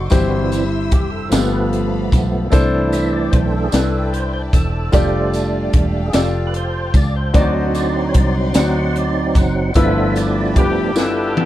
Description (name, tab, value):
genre	slow gospel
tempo	50 BPM (dotted quarters)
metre	6/8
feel	straight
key	C major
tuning	A4 = 440 Hz
part	clear grand piano	accompaniment	0.0-11.5 s	G2 to D5	-21 LUFS	left 2 dB	none
part	percussive tonewheel organ	sustained chords	0.0-11.5 s	E3 to F#5	-21 LUFS	right 3 dB	slow rotary speaker, overdrive, chorus vibrato
part	warm symphonic string section	sustained chords	0.0-11.5 s	Eb4 to E6	-33 LUFS	left 2 dB	none
part	fingered electric bass	bass	0.0-11.5 s	E1 to D2	-20 LUFS	equal	none
part	crisp fusion drum kit	drums	0.1-11.5 s	hi-hat, kick drum, snare drum, toms	-16 LUFS	equal	none
part	tambourine	percussion	0.1-11.3 s	none	-34 LUFS	right 9 dB	none
part	clear horn section	melody	10.6-11.5 s	B3 to G4	-21 LUFS	left 4 dB	none
room	little or no reverb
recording	none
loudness	-14 LUFS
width	side -14 dB against mid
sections	0.0-11.5 A section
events	tonewheel organ solo 0.0-11.5; drum fill 11.0-11.5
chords	0.1 C/G; 1.3 G9; 2.5 C69; 4.9 F69; 7.3 D7b9; 9.8 G13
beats	| 0.12 1.32 | 2.53 3.73 | 4.94 6.14 | 7.34 8.55 | 9.75 10.96